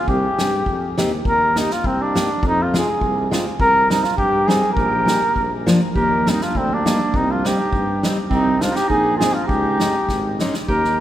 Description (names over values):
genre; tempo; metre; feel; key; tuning
alpine folk, alpine dance band; 102 BPM; 2/4; straight; unclear; A4 = 440 Hz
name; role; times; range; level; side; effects
warm flugelhorn; melody; 0.0-11.0 s; C4 to Bb4; -19 LUFS; equal; none
mellow tuba; bass; 0.1-11.0 s; Ab1 to G2; -24 LUFS; equal; none
natural country drum kit; drums; 0.1-10.9 s; hi-hat, kick drum, snare drum; -25 LUFS; equal; none
fingerpicked steel-string acoustic guitar; accompaniment; 0.4-10.5 s; F3 to G4; -24 LUFS; left 1 dB; none
clear clarinet; second line; 4.7-11.0 s; G3 to G4; -25 LUFS; right 3 dB; none
room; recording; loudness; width
wet cathedral reverb, RT60 4.8 s; recorded in a church or concert hall; -16 LUFS; side -12 dB against mid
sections
0.0-11.0 A section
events
drum fill 10.1-10.7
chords
0.1 Cm; 1.3 Eb; 2.4 Fm; 3.6 Cm; 4.8 Eb/Bb; 5.4 Bb; 6.0 Eb; 7.1 Cm; 8.3 Ab/C; 9.5 Dbsus2